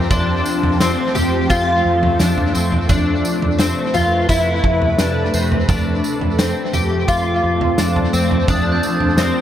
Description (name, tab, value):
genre	dream pop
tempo	86 BPM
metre	4/4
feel	straight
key	F lydian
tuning	A4 = 436 Hz
part	granular cloud pad	sustained chords	0.0-9.4 s	C3 to B4	-21 LUFS	equal	built-in reverb
part	fingerpicked twelve-string acoustic guitar	arpeggios	0.0-9.4 s	C4 to G4	-19 LUFS	left 2 dB	ensemble chorus, tape echo
part	vintage muted fingered electric bass	bass	0.0-9.3 s	F2	-21 LUFS	equal	none
part	loose indie drum kit	drums	0.1-9.3 s	kick drum, snare drum, tambourine, toms	-21 LUFS	right 1 dB	tape echo
part	glockenspiel with soft plastic mallets	texture	0.1-0.9, 7.1-9.4 s	C6 to A6	-28 LUFS	right 1 dB	tape echo
room	moderate spring reverb, RT60 2.6 s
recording	echo-heavy mix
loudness	-14 LUFS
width	side -10 dB against mid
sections	0.0-9.4 A section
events	none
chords	0.1 F; 2.9 Amadd9; 5.7 F; 8.5 Eb6/F